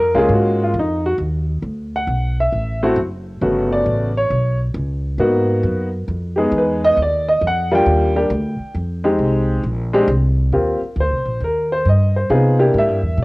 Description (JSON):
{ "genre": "jazz", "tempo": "135 BPM", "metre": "4/4", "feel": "swing 66% on 8ths", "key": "unclear", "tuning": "A4 = 440 Hz", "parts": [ { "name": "warm upright piano", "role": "melody", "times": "0.0-13.2 s", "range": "C#3 to G5", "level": "-16 LUFS", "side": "equal", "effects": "cassette tape" }, { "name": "upright bass", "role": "bass", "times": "0.0-13.2 s", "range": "F#1 to C3", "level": "-19 LUFS", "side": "equal", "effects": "none" } ], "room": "moderate studio reverb, RT60 0.6 s", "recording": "home recording on cassette", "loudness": "-15 LUFS", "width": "side -22 dB against mid", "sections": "0.0-10.5 A section; 10.5-13.2 B section", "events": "upright piano solo 0.0-10.5", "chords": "0.0 Gbmaj9; 1.6 Dadd9; 3.4 Gmaj9#11; 5.2 Abm7; 6.1 Emaj7; 7.0 Ebmaj7; 8.8 Fm7; 9.6 Bbsus2; 10.5 Eb6; 12.3 C7" }